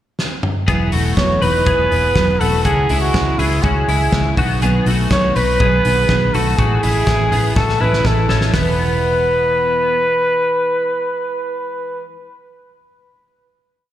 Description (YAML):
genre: jangly indie pop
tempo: 123 BPM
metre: 4/4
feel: straight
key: E major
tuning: A4 = 440 Hz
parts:
  - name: loose indie drum kit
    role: drums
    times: 0.2-8.6 s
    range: hi-hat, kick drum, snare drum, toms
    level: -20 LUFS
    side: equal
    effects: none
  - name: picked steel-string acoustic guitar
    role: accompaniment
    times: 0.7-12.2 s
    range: A2 to E4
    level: -23 LUFS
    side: right 4 dB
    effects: slapback echo
  - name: twelve-string electric guitar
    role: arpeggios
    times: 0.7-10.0 s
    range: G#3 to B4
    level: -23 LUFS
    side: left 4 dB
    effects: analog chorus, slapback echo
  - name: vintage muted fingered electric bass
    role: bass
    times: 0.7-12.0 s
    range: E1 to C#2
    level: -19 LUFS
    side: equal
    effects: none
  - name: breathy trumpet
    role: melody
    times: 1.2-12.0 s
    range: E4 to C#5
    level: -17 LUFS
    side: equal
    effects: slapback echo, ping-pong delay
room: small room ambience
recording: live gig heard through the venue's PA, recital hall reverb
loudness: -14 LUFS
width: side -12 dB against mid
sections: 0.0-0.7 pickup bar; 0.7-8.5 verse; 8.5-12.4 final chord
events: drum fill 0.2-0.7, 7.6-8.5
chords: 0.0 N.C.; 0.7 Esus2; 2.7 C#m; 4.4 B; 6.6 A; 8.5 E